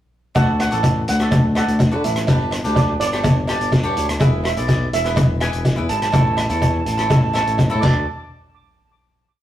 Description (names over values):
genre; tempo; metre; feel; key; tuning
calypso; 124 BPM; 4/4; straight; D major; A4 = 440 Hz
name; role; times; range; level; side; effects
cavaquinho; accompaniment; 0.3-8.1 s; D4 to D5; -25 LUFS; right 1 dB; none
steel pan; melody; 0.4-8.0 s; D5 to D6; -24 LUFS; right 3 dB; none
smooth gliding synth bass; bass; 0.4-8.1 s; E1 to D3; -22 LUFS; left 1 dB; none
street-band drum kit; drums; 0.4-7.9 s; crash cymbal, hi-hat, kick drum, rim click; -18 LUFS; equal; none
cowbell; percussion; 0.4-8.1 s; none; -30 LUFS; right 3 dB; none
room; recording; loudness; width
moderate stone room reverb, RT60 1.0 s; rough rehearsal-room recording; -16 LUFS; side -12 dB against mid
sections
0.4-8.1 verse; 8.1-9.4 final hit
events
none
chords
0.4 D; 2.3 G; 4.2 E7; 6.1 A; 7.8 D; 8.1 N.C.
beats
| 0.36 0.84 1.32 1.80 | 2.28 2.76 3.24 3.72 | 4.20 4.68 5.17 5.65 | 6.13 6.62 7.10 7.59